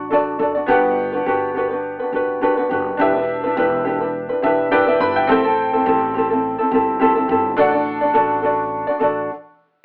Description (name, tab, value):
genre	acoustic pop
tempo	105 BPM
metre	4/4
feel	swing 55% on 16ths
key	G major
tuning	A4 = 440 Hz
part	ukulele	accompaniment	0.0-9.3 s	C4 to D5	-20 LUFS	equal	none
part	upright bass	bass	0.0-9.3 s	E1 to A1	-35 LUFS	equal	none
part	bright upright piano	accompaniment	0.7-9.3 s	B3 to B5	-24 LUFS	equal	none
room	light reverb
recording	AM radio sound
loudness	-18 LUFS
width	mono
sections	0.7-9.8 A section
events	upright piano fill 4.1-5.3; stop 9.3-9.8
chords	0.0 D/A; 0.7 Gmaj7; 3.0 Em7; 5.3 Am7; 7.6 D/A